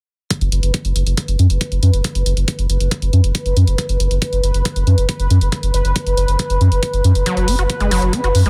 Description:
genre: psychedelic trance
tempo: 138 BPM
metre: 4/4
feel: straight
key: unclear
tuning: A4 = 439 Hz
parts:
  - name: bubbling stepped-filter texture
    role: sustained chords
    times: 0.3-8.5 s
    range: B4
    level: -26 LUFS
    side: equal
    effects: chorus, built-in reverb, sidechain pumping
  - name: electronic hi-hat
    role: drums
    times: 0.3-8.5 s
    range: none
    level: -28 LUFS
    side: equal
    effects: none
  - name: electronic kick drum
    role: drums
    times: 0.3-8.2 s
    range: none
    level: -24 LUFS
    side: equal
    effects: high-pass filter on kick, high-pass filter on room
  - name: round analog bass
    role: bass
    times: 0.4-8.5 s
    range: F#1 to F#2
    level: -17 LUFS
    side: equal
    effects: none
  - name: overdriven acid bass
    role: riff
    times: 7.3-8.5 s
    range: F#3 to F#4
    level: -22 LUFS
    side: equal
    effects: distortion, sidechain pumping, digital delay
room: little or no reverb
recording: dense, heavily limited modern master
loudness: -17 LUFS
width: mono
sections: 0.3-8.5 A section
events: filter sweep on synth texture 0.3-8.5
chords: 0.3 F#5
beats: | 0.30 0.74 1.17 1.61 | 2.04 2.48 2.91 3.35 | 3.78 4.22 4.65 5.09 | 5.52 5.96 6.39 6.83 | 7.26 7.70 8.13

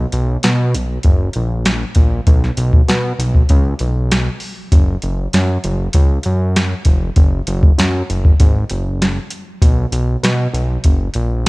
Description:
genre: indie pop, bedroom pop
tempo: 98 BPM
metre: 4/4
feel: straight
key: unclear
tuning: A4 = 440 Hz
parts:
  - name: fat analog bass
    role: bass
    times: 0.0-11.5 s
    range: E#1 to B2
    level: -17 LUFS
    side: equal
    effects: none
  - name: soft vintage rhythm box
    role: drums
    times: 0.1-11.5 s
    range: hi-hat, kick drum, snare drum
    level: -13 LUFS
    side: equal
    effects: overdrive
room: little or no reverb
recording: cassette tape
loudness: -13 LUFS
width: side -24 dB against mid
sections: 0.0-11.5 A section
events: none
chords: none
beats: 0.43 1.05 1.66 | 2.27 2.88 3.50 4.11 | 4.72 5.33 5.94 6.56 | 7.17 7.78 8.39 9.01 | 9.62 10.23 10.84 11.45

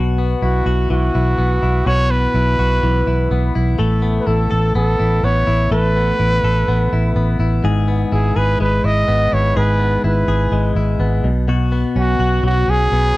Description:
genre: jangly indie pop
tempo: 125 BPM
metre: 4/4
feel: straight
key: E major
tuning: A4 = 440 Hz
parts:
  - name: direct-recorded clean electric guitar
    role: arpeggios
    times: 0.0-13.2 s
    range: G#2 to A4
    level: -21 LUFS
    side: left 3 dB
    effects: wide subtle chorus, slapback echo
  - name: vintage muted fingered electric bass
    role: bass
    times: 0.0-13.1 s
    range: G#1 to B1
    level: -16 LUFS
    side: equal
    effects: none
  - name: breathy trumpet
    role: melody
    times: 0.4-13.2 s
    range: F#4 to D#5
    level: -19 LUFS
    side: right 1 dB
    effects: none
room: little or no reverb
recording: dry, close 1970s-style studio recording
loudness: -14 LUFS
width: side -18 dB against mid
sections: 0.0-13.2 A section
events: none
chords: 0.0 Bsus4; 3.8 Asus2; 7.6 E/G#; 11.2 Bsus2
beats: 0.42 0.90 1.38 | 1.86 2.35 2.83 3.31 | 3.79 4.27 4.75 5.23 | 5.71 6.19 6.67 7.16 | 7.64 8.12 8.60 9.08 | 9.56 10.04 10.52 11.00 | 11.48 11.97 12.45 12.93

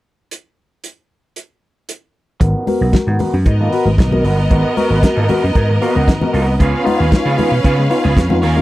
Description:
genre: disco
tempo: 114 BPM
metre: 4/4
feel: straight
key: G# dorian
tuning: A4 = 442 Hz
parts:
  - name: warm soul drum kit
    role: drums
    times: 0.3-8.6 s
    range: hi-hat, kick drum, snare drum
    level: -14 LUFS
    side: equal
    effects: none
  - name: barky tine electric piano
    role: accompaniment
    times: 2.4-8.6 s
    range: G#2 to A#4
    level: -19 LUFS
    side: left 2 dB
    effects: overdrive, wide subtle chorus, low-pass filter
  - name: electric guitar at the edge of break-up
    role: accompaniment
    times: 2.4-8.6 s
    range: B3 to B4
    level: -22 LUFS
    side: right 2 dB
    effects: low-pass filter
  - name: vintage slap bass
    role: bass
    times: 2.4-8.6 s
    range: G1 to C#3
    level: -15 LUFS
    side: equal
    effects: none
  - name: congas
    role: percussion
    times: 2.4-8.6 s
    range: none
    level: -22 LUFS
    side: left 3 dB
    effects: none
  - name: bright studio string section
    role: second line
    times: 3.5-8.6 s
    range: B3 to E#5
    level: -19 LUFS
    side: right 1 dB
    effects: none
room: small room ambience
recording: none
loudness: -12 LUFS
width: side -16 dB against mid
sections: 0.3-2.4 A section; 2.4-8.6 B section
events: filter sweep 2.4-8.6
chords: 0.3 N.C.; 2.4 G#m9; 6.6 C#7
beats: | 0.31 0.84 1.36 1.89 | 2.41 2.93 3.46 3.98 | 4.50 5.03 5.55 6.08 | 6.60 7.12 7.65 8.17

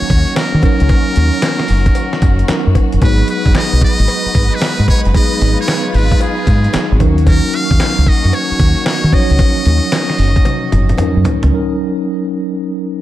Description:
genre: R&B, new jack swing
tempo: 113 BPM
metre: 4/4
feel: swing 66% on 16ths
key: unclear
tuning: A4 = 439 Hz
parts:
  - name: trumpet with metal mute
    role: melody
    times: 0.0-11.3 s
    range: G#4 to E#5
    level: -20 LUFS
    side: equal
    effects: tape echo
  - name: mellow tine electric piano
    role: accompaniment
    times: 0.0-13.0 s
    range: E#3 to C#5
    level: -18 LUFS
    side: right 1 dB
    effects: medium stereo tremolo
  - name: clear studio string section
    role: sustained chords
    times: 0.0-11.5 s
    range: D#3 to B4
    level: -24 LUFS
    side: equal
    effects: none
  - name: deep dub fingered electric bass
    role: bass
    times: 0.0-11.5 s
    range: F#1 to D#3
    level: -13 LUFS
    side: equal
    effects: none
  - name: dusty soul sampler-style drum kit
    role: drums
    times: 0.1-11.5 s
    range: handclaps, hi-hat, kick drum, snare drum, tambourine, toms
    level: -14 LUFS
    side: equal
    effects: gated reverb
  - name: cowbell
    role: percussion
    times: 0.4-11.4 s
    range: none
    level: -30 LUFS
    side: left 6 dB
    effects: none
room: digital ambience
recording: none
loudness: -11 LUFS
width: side -14 dB against mid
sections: 0.0-11.5 A section; 11.5-13.0 B section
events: drum fill 10.5-11.5; break 11.5-13.0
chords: 0.0 D#m7; 3.0 G#m7; 7.0 D#m7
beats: 0.36 | 0.90 1.43 1.96 2.49 | 3.02 3.55 4.08 4.61 | 5.14 5.67 6.21 6.74 | 7.27 7.80 8.33 8.86 | 9.39 9.92 10.45 10.98 | 11.51 12.04 12.58

